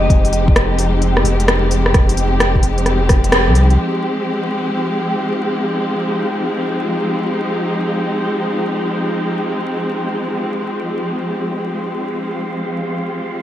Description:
future garage; free time; F minor; A4 = 438 Hz
dark symphonic string section; sustained chords; 0.0-13.4 s; F3 to G4; -19 LUFS; equal; sidechain pumping
warm sub bass; bass; 0.0-3.8 s; F1 to C2; -16 LUFS; equal; sidechain pumping
wind-like tuned noise texture; texture; 0.0-13.4 s; C4 to G5; -27 LUFS; equal; built-in reverb
electronic kick drum; drums; 0.1-3.2 s; -14 LUFS; equal
organic electronic drum kit; drums; 0.1-3.8 s; hi-hat, rim click; -18 LUFS; equal
moderate plate reverb, RT60 1.1 s; dreamy mix soaked in reverb, vinyl crackle; -15 LUFS; side -12 dB against mid
0.0-3.8 A section; 3.8-13.4 B section
kick drops out 3.3-3.8; band accent 3.3
0.0 Fm9

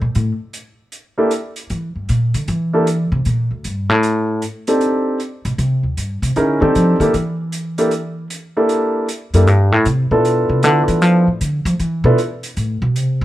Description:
jazz piano trio; 155 BPM; 4/4; swing 66% on 8ths; C mixolydian; A4 = 441 Hz
upright bass; bass; 0.0-13.2 s; D2 to F3; -16 LUFS; equal
hi-hat; drums; 0.1-13.1 s; -32 LUFS; right 2 dB
warm grand piano; melody; 1.2-12.2 s; Bb3 to Bb4; -16 LUFS; equal
light reverb; -15 LUFS; side -14 dB against mid
0.0-13.2 A section
upright bass solo 0.0-13.2
0.0 N.C.; 0.9 C9 (rootless); 4.0 F13; 7.1 C13 (rootless); 10.2 Dm13

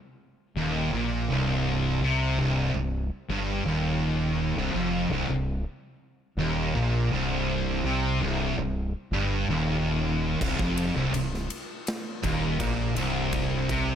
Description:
stoner and doom metal; 82 BPM; 4/4; straight; C minor; A4 = 440 Hz
high-gain distorted guitar; riff; 0.6-13.9 s; C2 to C3; -31 LUFS; equal; distortion
thick fuzz guitar; riff; 0.6-13.9 s; C2 to C3; -30 LUFS; left 7 dB; distortion
thick fuzz guitar; riff; 0.6-13.9 s; C2 to C3; -30 LUFS; right 7 dB; distortion
growling fingered electric bass; bass; 0.6-13.9 s; C1 to C2; -31 LUFS; equal; overdrive, tube saturation
big rock drum kit; drums; 10.4-13.9 s; crash cymbal, kick drum, ride cymbal, snare drum; -33 LUFS; equal
small room ambience; -25 LUFS; side -9 dB against mid
0.0-13.9 A section
0.0 Cm

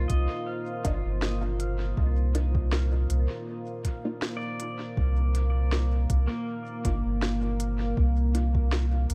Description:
ambient dub; 80 BPM; 4/4; swing 53% on 16ths; C minor; A4 = 440 Hz
deep dark ambient pad; sustained chords; 0.0-9.1 s; Bb3 to C5; -38 LUFS; equal; chorus, built-in reverb
pedal steel guitar; arpeggios; 0.0-9.1 s; Bb3 to F5; -39 LUFS; equal; dub echo
soft dub sub bass; bass; 0.0-9.1 s; G1 to C2; -27 LUFS; equal
electronic kick drum; drums; 0.1-8.7 s; -30 LUFS; equal
organic electronic drum kit; drums; 0.1-9.1 s; hi-hat, snare drum; -38 LUFS; equal; dub echo
filtered dub chord stab; stabs; 0.8-8.5 s; Bb3 to F4; -41 LUFS; equal
little or no reverb; -28 LUFS; mono
0.0-9.1 A section
0.0 Cm11

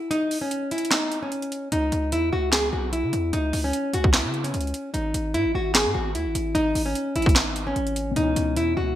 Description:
hip hop, trap; 149 BPM; 4/4; half-time; C# minor; A4 = 440 Hz
nylon-string guitar; melody; 0.0-9.0 s; C#4 to G#4; -25 LUFS; left 1 dB; digital delay
trap drum kit; drums; 0.1-8.7 s; handclaps, hi-hat, kick drum, snare drum; -24 LUFS; equal; vintage 12-bit sampler grit, gated reverb
hard-hitting 808-style bass; bass; 1.7-9.0 s; G#1 to C#3; -28 LUFS; equal
dark grand piano; accompaniment; 8.1-9.0 s; B2 to C#4; -28 LUFS; left 5 dB; lush chorus
wet plate reverb, RT60 1.1 s, small room reverb; bright 1980s-style digital production; -21 LUFS; side -12 dB against mid
0.0-9.0 A section
break 0.0-1.7
0.0 N.C.; 1.7 C#m; 4.9 G#sus4; 8.2 C#m7

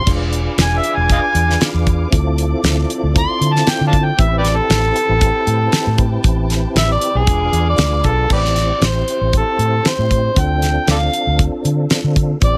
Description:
straight-eighth soul blues; 117 BPM; 4/4; swing 54% on 16ths; A minor; A4 = 440 Hz
overdriven harmonica; melody; 0.0-12.6 s; G4 to C6; -20 LUFS; equal
mellow tonewheel organ; accompaniment; 0.0-12.6 s; C4 to C5; -26 LUFS; equal; slow rotary speaker, chorus vibrato
muted studio string section; sustained chords; 0.0-8.3 s; D5 to D6; -35 LUFS; equal
vintage muted fingered electric bass; bass; 0.1-12.6 s; E1 to D3; -20 LUFS; equal
damped 70s drum kit; drums; 0.1-12.5 s; crash cymbal, hi-hat, kick drum, snare drum; -20 LUFS; equal
studio reverb; -16 LUFS; mono
0.0-8.3 A section; 8.3-12.6 A section
harmonica solo 0.0-8.3, 8.3-12.6
0.1 E7b9; 2.1 Dm7; 4.2 Am7; 7.3 E7b9; 8.3 Am7; 10.4 Dm7

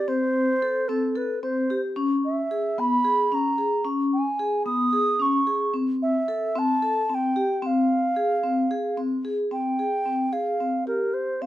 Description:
contemporary instrumental, contemporary; 223 BPM (eighths); 7/8; straight; A4 = 439 Hz
mellow baroque flute; melody; 0.0-11.5 s; A4 to Eb6; -24 LUFS; right 2 dB
vibraphone with soft mallets; arpeggios; 0.1-11.5 s; Cb4 to A4; -25 LUFS; left 2 dB
light reverb; close, detailed microphones; -22 LUFS; side -14 dB against mid
0.0-9.5 A section; 9.5-11.5 B section
0.0 Am; 2.0 Db7(no3); 5.7 Am; 7.6 Fm; 9.5 Fmadd9

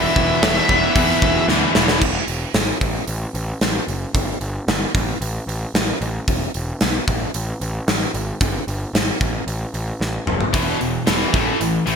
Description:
hard rock; 113 BPM; 4/4; straight; A4 = 441 Hz
high-gain lead guitar; melody; 0.0-1.5 s; E5; -21 LUFS; left 2 dB; distortion, digital delay
overdriven tonewheel organ; sustained chords; 0.0-2.0 s; E4 to F#5; -31 LUFS; right 1 dB
cranked stack guitar; riff; 0.0-2.0, 10.5-12.0 s; E2 to A3; -23 LUFS; right 10 dB; overdrive
tight distorted guitar; riff; 0.0-2.0, 10.5-12.0 s; E2 to A3; -21 LUFS; left 10 dB; distortion
fuzz picked electric bass; bass; 0.0-12.0 s; E1 to E2; -24 LUFS; equal; overdrive
gated 80s drum kit; drums; 0.2-12.0 s; crash cymbal, hi-hat, kick drum, snare drum, toms; -20 LUFS; equal; gated reverb
moderate lush hall reverb, RT60 1.8 s, small room reverb; bright 1980s-style digital production; -17 LUFS; side -6 dB against mid
0.0-2.0 A section; 2.0-12.0 B section
drum fill 1.5-2.0, 10.0-10.5
0.0 E5; 2.0 E; 2.8 F#m; 4.1 N.C.; 6.3 E5; 7.1 N.C.; 9.2 F#m; 10.5 E5; 11.3 A5

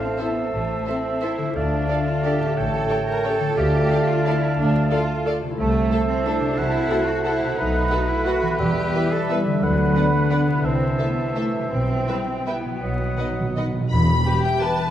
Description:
classical, orchestral ballroom waltz; 154-197 BPM; 3/4; rubato; E minor from 5.6 s; A4 = 440 Hz
bright clarinet; second line; 0.0-13.7 s; B4 to D5; -31 LUFS; equal
bright flute section; second line; 0.0-13.7 s; F#5 to B5; -32 LUFS; right 1 dB
mellow cor anglais; second line; 0.0-13.7 s; D#5 to G5; -31 LUFS; right 2 dB
warm bassoon; accompaniment; 0.0-13.7 s; D3 to A3; -28 LUFS; right 2 dB
concert harp; arpeggios; 0.0-14.9 s; A2 to E5; -26 LUFS; left 4 dB
rich studio cello section; bass; 0.0-14.2 s; E2 to Bb4; -27 LUFS; right 2 dB
rich studio violin section; melody; 0.2-14.9 s; E5 to B5; -31 LUFS; left 3 dB
warm studio violin section; second line; 0.2-14.7 s; G4 to E5; -35 LUFS; left 2 dB
rich symphonic viola section; accompaniment; 0.2-14.9 s; G4 to B4; -32 LUFS; right 2 dB
mellow French horn section; sustained chords; 0.2-13.7 s; F#3 to G4; -32 LUFS; left 1 dB
bright studio double bass section; bass; 0.5-14.2 s; E1 to E2; -26 LUFS; right 1 dB
timpani; percussion; 8.6-9.1, 11.7-14.4 s; E2 to B2; -28 LUFS; right 1 dB
wet scoring stage reverb, RT60 2.0 s; dark, warm production, vinyl crackle; -19 LUFS; side -11 dB against mid
0.0-13.9 A section
timpani fill 12.8-13.9
0.0 Am; 1.6 Dm; 2.6 A7; 3.6 Dm; 5.6 Am/C; 6.6 F#m7b5/C; 7.6 B7; 8.6 Em; 9.6 Bm/D; 10.6 Am/C; 11.7 Em/B; 12.8 B; 13.9 Em

